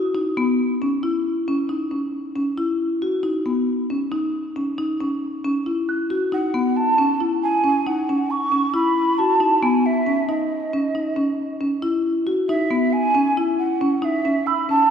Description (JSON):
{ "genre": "contemporary instrumental, chamber music in an uneven meter", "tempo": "136 BPM", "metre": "7/4", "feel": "straight", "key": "unclear", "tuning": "A4 = 444 Hz", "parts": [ { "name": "marimba with medium mallets", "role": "arpeggios", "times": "0.0-14.9 s", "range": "B3 to F#4", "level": "-20 LUFS", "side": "left 1 dB", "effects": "none" }, { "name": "small celesta", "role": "texture", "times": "0.0-0.6, 5.9-6.7, 14.5-14.9 s", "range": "D#6 to F#6", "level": "-29 LUFS", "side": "right 6 dB", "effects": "none" }, { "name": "breathy mellow jazz flute", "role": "melody", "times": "6.3-14.9 s", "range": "D#5 to C#6", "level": "-21 LUFS", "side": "right 3 dB", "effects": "none" } ], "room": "wet church reverb, RT60 2.7 s", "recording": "recorded in a church or concert hall", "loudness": "-19 LUFS", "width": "side -8 dB against mid", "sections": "0.0-14.9 A section", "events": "none", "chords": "0.0 Bsus4" }